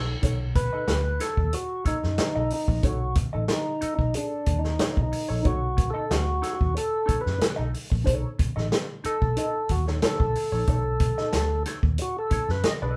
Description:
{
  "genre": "funk",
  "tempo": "92 BPM",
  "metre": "4/4",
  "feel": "straight",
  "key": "B mixolydian",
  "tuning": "A4 = 439 Hz",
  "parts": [
    { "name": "semi-hollow electric guitar", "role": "accompaniment", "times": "0.0-13.0 s", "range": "D#4 to D#5", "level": "-36 LUFS", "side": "equal", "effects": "wah" },
    { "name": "vintage muted fingered electric bass", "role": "bass", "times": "0.0-13.0 s", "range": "A1 to F#2", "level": "-30 LUFS", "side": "equal", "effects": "none" },
    { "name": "vintage drum kit", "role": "drums", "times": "0.2-12.8 s", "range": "hi-hat, kick drum, snare drum", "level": "-29 LUFS", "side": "equal", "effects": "none" },
    { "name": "tonewheel organ", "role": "melody", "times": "0.6-13.0 s", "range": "D4 to D#5", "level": "-31 LUFS", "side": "equal", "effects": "slow rotary speaker" }
  ],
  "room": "moderate studio reverb, RT60 0.5 s",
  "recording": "band playing live in one room",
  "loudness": "-26 LUFS",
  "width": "mono",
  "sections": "0.2-13.0 A section",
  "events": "drum fill 0.0; band accent 0.0; tonewheel organ solo 0.2-13.0",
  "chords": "0.2 B9"
}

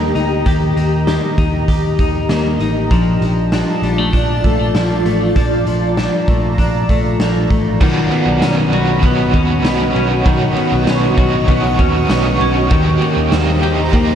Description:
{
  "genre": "dream pop",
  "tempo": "98 BPM",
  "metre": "4/4",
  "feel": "straight",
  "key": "unclear",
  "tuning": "A4 = 440 Hz",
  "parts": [
    { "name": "granular cloud pad", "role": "sustained chords", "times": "0.0-14.2 s", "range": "F4 to C#6", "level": "-20 LUFS", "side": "right 1 dB", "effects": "built-in reverb" },
    { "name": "semi-hollow electric guitar", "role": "arpeggios", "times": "0.0-14.2 s", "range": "Eb3 to G4", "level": "-18 LUFS", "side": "left 2 dB", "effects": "lush chorus, tape echo" },
    { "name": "vintage muted picked electric bass", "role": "bass", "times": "0.0-14.2 s", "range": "A1 to Eb2", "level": "-19 LUFS", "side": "equal", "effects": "none" },
    { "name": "raw garage drum kit", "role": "drums", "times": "0.2-14.1 s", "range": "crash cymbal, hi-hat, kick drum, ride cymbal, snare drum, tambourine", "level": "-18 LUFS", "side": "equal", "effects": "none" },
    { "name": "biting overdriven guitar", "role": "accompaniment", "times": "7.8-14.2 s", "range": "B2 to G4", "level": "-20 LUFS", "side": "right 3 dB", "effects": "tremolo, wide subtle chorus" }
  ],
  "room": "light reverb, small room ambience",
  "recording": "dark, warm production",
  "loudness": "-12 LUFS",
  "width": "side -9 dB against mid",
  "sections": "0.0-7.8 A section; 7.8-14.2 B section",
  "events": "none",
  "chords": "0.0 Eb; 2.9 Bbmaj7; 7.8 Badd9; 12.7 Eb6"
}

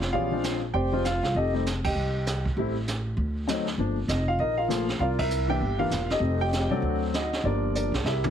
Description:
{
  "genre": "jazz piano trio",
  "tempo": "197 BPM",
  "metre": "4/4",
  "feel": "swing 61% on 8ths",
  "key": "F mixolydian",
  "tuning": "A4 = 440 Hz",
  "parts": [
    { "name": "warm concert grand piano", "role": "melody", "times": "0.0-8.3 s", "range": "E3 to G5", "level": "-27 LUFS", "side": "left 1 dB", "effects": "none" },
    { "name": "upright bass", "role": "bass", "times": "0.0-8.3 s", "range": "E1 to D2", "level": "-28 LUFS", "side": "equal", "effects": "none" },
    { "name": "jazz brush drum kit", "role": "drums", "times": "0.0-8.3 s", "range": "brushed snare drum, crash cymbal, hi-hat, kick drum, snare drum, toms", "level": "-33 LUFS", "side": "right 3 dB", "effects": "none" }
  ],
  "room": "light reverb",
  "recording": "heavily compressed radio sound, multiband compression",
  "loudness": "-24 LUFS",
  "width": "side -9 dB against mid",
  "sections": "0.0-8.3 A section",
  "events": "band accent 1.8, 5.2; drum fill 7.7-8.3",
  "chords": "0.0 Bb9; 1.4 F9; 2.6 Am7; 3.2 D7b9; 3.8 Gm7; 5.0 C9; 6.2 F9; 6.8 D7b9; 7.4 Gm7"
}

